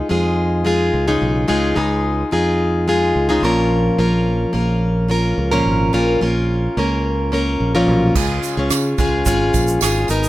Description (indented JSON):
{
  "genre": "acoustic pop",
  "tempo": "108 BPM",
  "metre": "4/4",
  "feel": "straight",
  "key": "unclear",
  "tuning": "A4 = 440 Hz",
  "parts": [
    { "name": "picked plugged-in steel-string acoustic guitar", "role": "accompaniment", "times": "0.0-10.3 s", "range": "Bb2 to Bb4", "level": "-17 LUFS", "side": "left 1 dB", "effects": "none" },
    { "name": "fingered electric bass", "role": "bass", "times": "0.1-10.3 s", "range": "Ab1 to Db3", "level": "-20 LUFS", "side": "right 1 dB", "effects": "none" },
    { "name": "soft brush drum kit", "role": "drums", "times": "8.2-10.3 s", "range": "crash cymbal, kick drum, rim click, shaker", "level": "-22 LUFS", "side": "right 2 dB", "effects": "none" },
    { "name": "tambourine", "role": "percussion", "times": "8.2-10.2 s", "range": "none", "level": "-28 LUFS", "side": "right 10 dB", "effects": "none" }
  ],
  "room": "little or no reverb",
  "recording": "close, detailed microphones",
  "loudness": "-15 LUFS",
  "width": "side -15 dB against mid",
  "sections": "0.0-8.2 A section; 8.2-10.3 B section",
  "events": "none",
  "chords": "0.0 Dbadd9; 3.4 Bbm; 8.2 Db"
}